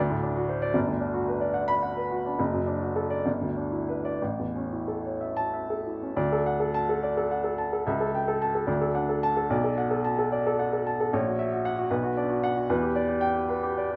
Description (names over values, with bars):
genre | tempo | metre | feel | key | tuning
classical, romantic character piece for solo piano | 59-78 BPM (dotted quarters) | 6/8 | rubato | D major | A4 = 436 Hz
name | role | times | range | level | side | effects
warm upright piano | solo | 0.0-14.0 s | F#1 to B5 | -27 LUFS | equal | none
room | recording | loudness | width
moderate recital hall reverb, RT60 1.7 s | nothing above 7.8 kHz | -27 LUFS | mono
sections
0.0-6.2 A section; 6.2-14.0 B section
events
none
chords
0.0 D7; 0.8 Gmaj7; 2.4 D/F#; 3.3 Em7/G; 4.2 A; 6.2 D; 7.9 A7/C#; 8.7 D; 9.5 Bm7; 11.1 F#7/A#; 11.9 Bm; 12.7 Em7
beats
| 0.75 1.54 | 2.39 3.26 | 4.21 5.21 | 6.17 7.03 | 7.87 8.69 | 9.51 10.32 | 11.13 11.90 | 12.70 13.50